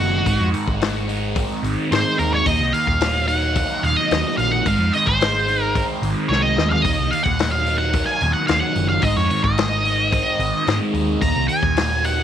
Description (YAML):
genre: psychedelic rock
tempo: 110 BPM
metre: 4/4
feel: straight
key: unclear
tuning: A4 = 440 Hz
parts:
  - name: octave-fuzz lead guitar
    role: melody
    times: 0.0-12.2 s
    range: Gb4 to Bb5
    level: -21 LUFS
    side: right 1 dB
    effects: wah, distortion, tape echo
  - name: thick fuzz guitar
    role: riff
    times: 0.0-12.2 s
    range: Eb2 to Eb4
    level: -23 LUFS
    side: right 1 dB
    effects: distortion, phaser
  - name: hollow-body short-scale picked electric bass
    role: bass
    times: 0.0-12.2 s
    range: Eb1 to Ab2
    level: -23 LUFS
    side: equal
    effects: none
  - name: vintage drum kit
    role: drums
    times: 0.3-12.2 s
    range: hi-hat, kick drum, snare drum, toms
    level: -25 LUFS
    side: left 4 dB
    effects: none
room: light reverb, studio reverb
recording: 1960s-style stereo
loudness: -17 LUFS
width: side -9 dB against mid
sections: 0.0-12.2 A section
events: lead electric guitar solo 0.0-12.2; drum fill 6.3-6.8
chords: 0.3 Ab; 2.5 Ebm; 4.7 Ab; 6.8 Ebm; 9.0 Ab; 11.2 Ebm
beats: | 0.27 0.82 1.37 1.92 | 2.46 3.01 3.56 4.11 | 4.66 5.21 5.75 6.30 | 6.85 7.39 7.94 8.49 | 9.04 9.58 10.13 10.67 | 11.22 11.77